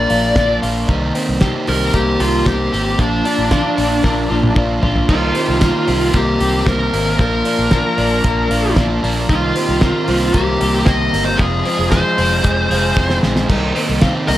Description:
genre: jangly indie pop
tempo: 114 BPM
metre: 4/4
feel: straight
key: C minor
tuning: A4 = 436 Hz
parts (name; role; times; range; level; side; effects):
- dark smooth lead guitar; melody; 0.0-14.4 s; D4 to Eb5; -19 LUFS; equal; overdrive, tape echo
- crunchy overdriven guitar; accompaniment; 0.0-14.4 s; F2 to G4; -21 LUFS; right 3 dB; none
- twelve-string electric guitar; arpeggios; 0.0-14.4 s; Eb3 to Ab4; -21 LUFS; left 3 dB; none
- vintage muted fingered electric bass; bass; 0.0-14.4 s; F1 to C2; -20 LUFS; equal; none
- cloth-damped thuddy drum kit; drums; 0.1-14.4 s; crash cymbal, hi-hat, kick drum, snare drum, toms; -19 LUFS; equal; none
room: moderate small room reverb, RT60 0.5 s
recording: none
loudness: -13 LUFS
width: side -14 dB against mid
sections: 0.0-5.1 A section; 5.1-13.5 B section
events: drum fill 4.0-5.1, 13.0-13.5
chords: 0.0 Bb; 0.9 Cm7; 3.0 Bb; 5.1 Cm7; 7.2 Bb; 9.3 Cm7; 11.4 Fm; 13.5 Cm7

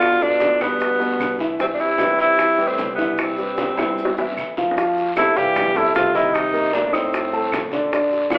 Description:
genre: Afro-Cuban jazz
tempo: 152 BPM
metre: 4/4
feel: straight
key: C major, F major from 4.8 s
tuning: A4 = 440 Hz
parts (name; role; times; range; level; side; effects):
- breathy tenor saxophone; melody; 0.0-8.4 s; B3 to G4; -18 LUFS; equal; none
- breathy trombone; second line; 0.0-8.4 s; G2 to E3; -27 LUFS; equal; none
- warm concert grand piano; accompaniment; 0.0-8.4 s; B2 to Eb6; -22 LUFS; equal; none
- upright bass; bass; 0.0-8.4 s; G1 to G2; -41 LUFS; equal; none
- bongos; percussion; 0.0-8.4 s; none; -28 LUFS; equal; none
- claves; percussion; 0.0-8.4 s; none; -32 LUFS; equal; none
- congas; percussion; 0.0-8.4 s; none; -31 LUFS; equal; none
- guiro; percussion; 0.0-8.4 s; none; -34 LUFS; equal; none
- maracas; percussion; 0.0-8.4 s; none; -48 LUFS; equal; none
room: moderate large studio reverb, RT60 1.1 s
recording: band playing live in one room, telephone sound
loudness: -17 LUFS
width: side -33 dB against mid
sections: 0.0-4.8 A section; 4.8-8.4 B section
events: drum fill 3.8-4.8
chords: 0.0 G7; 1.6 Cmaj7; 4.8 Fmaj9; 6.3 Cm7; 7.1 F6

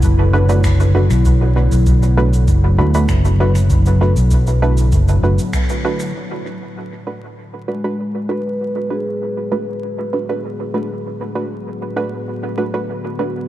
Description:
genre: ambient dub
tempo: 98 BPM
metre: 4/4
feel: straight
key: B dorian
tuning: A4 = 440 Hz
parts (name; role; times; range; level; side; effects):
- warbly tape-like pad; sustained chords; 0.0-13.5 s; A2 to F#4; -25 LUFS; equal; chorus, built-in reverb
- fingered electric bass; bass; 0.0-5.4 s; F#1 to D2; -13 LUFS; equal; none
- electronic cabasa and finger snaps; drums; 0.0-6.1 s; none; -32 LUFS; equal; low-pass filter on perc, studio reverb, low-pass filter on snare, dub echo
- electronic kick drum; drums; 0.0-5.7 s; none; -19 LUFS; equal; overdrive, studio reverb
- filtered dub chord stab; stabs; 0.3-13.3 s; A3 to B4; -22 LUFS; right 2 dB; chorus, dub echo
- vibraphone with soft mallets; arpeggios; 7.7-13.5 s; G#3 to B4; -24 LUFS; left 1 dB; low-pass filter, tape echo
room: digital ambience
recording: vinyl crackle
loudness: -14 LUFS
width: side -14 dB against mid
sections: 0.0-6.1 A section; 6.1-13.5 B section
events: band accent 5.5-5.8; filter sweep on ambient pad 6.1-13.5; filter sweep on vibraphone 6.1-13.5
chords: 0.0 Bm7

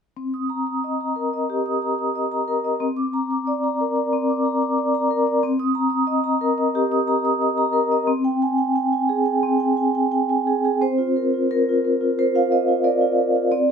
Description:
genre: classical, contemporary piece for solo vibraphone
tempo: 90 BPM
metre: 4/4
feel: rubato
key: C minor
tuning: A4 = 441 Hz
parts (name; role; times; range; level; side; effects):
- vibraphone with medium mallets; solo; 0.2-13.7 s; C4 to Eb6; -19 LUFS; equal; none
room: light reverb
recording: minimal, uncompressed stereo recording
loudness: -19 LUFS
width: side -6 dB against mid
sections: 0.2-10.8 A section; 10.8-13.7 B section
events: none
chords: 0.2 Cm7; 2.8 Bbadd9/C; 5.4 Cm7; 8.1 Abmaj7/C; 10.8 C9sus4

